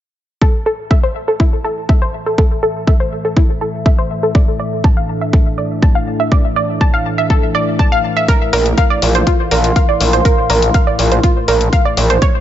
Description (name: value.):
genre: melodic techno.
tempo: 122 BPM.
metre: 4/4.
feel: straight.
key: A phrygian.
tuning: A4 = 440 Hz.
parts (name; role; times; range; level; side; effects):
analog pluck; arpeggios; 0.4-12.3 s; E4 to A5; -17 LUFS; right 1 dB; chorus, sidechain pumping, ping-pong delay.
analog drone; drone; 1.7-12.4 s; A2 to E3; -23 LUFS; left 1 dB; chorus, sidechain pumping.
electronic kick drum; drums; 0.4-12.3 s; none; -12 LUFS; equal; studio reverb.
warbly tape-like pad; texture; 1.3-12.4 s; C#4 to C6; -24 LUFS; equal; chorus, built-in reverb, sidechain pumping.
electronic hi-hat; drums; 8.3-12.3 s; none; -21 LUFS; left 5 dB; studio reverb.
gritty driven synth bass; bass; 8.5-12.2 s; Bb1; -14 LUFS; equal; distortion, sidechain pumping.
room: digital ambience.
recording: nothing above 7.6 kHz.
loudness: -12 LUFS.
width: side -11 dB against mid.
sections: 0.4-12.4 A section.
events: fade-in on ambient pad 0.4-12.4; filter sweep on synth pluck 0.4-12.4.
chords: 0.4 A5; 4.3 D5; 8.3 Bb.